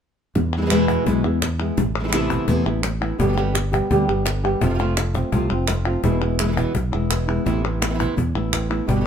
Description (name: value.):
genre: flamenco.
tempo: 169 BPM.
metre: 4/4.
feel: straight.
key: unclear.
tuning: A4 = 440 Hz.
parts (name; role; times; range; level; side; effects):
flamenco guitar; melody; 0.4-9.1 s; B2 to G4; -22 LUFS; left 1 dB; none.
flamenco guitar; stabs; 0.4-9.1 s; B2 to G4; -29 LUFS; right 6 dB; none.
fingered electric bass; bass; 0.4-9.1 s; E1 to E2; -23 LUFS; equal; none.
cajon; percussion; 0.4-9.1 s; none; -27 LUFS; left 3 dB; none.
palmas hand claps; percussion; 0.5-8.9 s; none; -28 LUFS; left 1 dB; none.
room: light reverb.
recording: minimal, uncompressed stereo recording.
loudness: -18 LUFS.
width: side -8 dB against mid.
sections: 0.4-9.1 A section.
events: none.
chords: 0.4 E; 1.8 Amadd9; 3.2 G; 4.6 F; 6.0 E; 7.5 Amadd9.